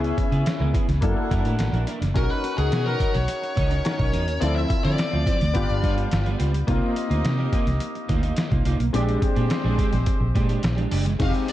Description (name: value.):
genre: polished 1980s jazz-funk pop.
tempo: 106 BPM.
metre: 4/4.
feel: straight.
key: unclear.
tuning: A4 = 443 Hz.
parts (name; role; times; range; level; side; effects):
clear horn section; second line; 0.0-10.9 s; Ab3 to Gb5; -33 LUFS; left 1 dB; none.
clear baby grand piano; accompaniment; 0.0-11.5 s; Ab3 to A#4; -30 LUFS; left 3 dB; ensemble chorus.
electric guitar at the edge of break-up; riff; 0.0-11.5 s; F3 to B4; -30 LUFS; right 4 dB; analog chorus.
vintage muted fingered electric bass; bass; 0.0-11.3 s; F1 to D3; -23 LUFS; equal; none.
trip hop sampler-style drum kit; drums; 0.0-11.5 s; crash cymbal, hi-hat, kick drum, snare drum; -25 LUFS; equal; none.
bluesy overdriven lead guitar; melody; 2.2-5.9, 11.2-11.5 s; Ab4 to F5; -29 LUFS; left 3 dB; distortion, ping-pong delay.
room: digital ambience.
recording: dark, warm production.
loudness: -20 LUFS.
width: side -14 dB against mid.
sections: 0.0-11.2 A section.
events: none.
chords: 0.0 Dbm7; 1.0 Gb7alt; 2.2 Bmaj9; 4.4 Dm9; 5.5 G7; 6.7 Cm11; 8.9 Bb13.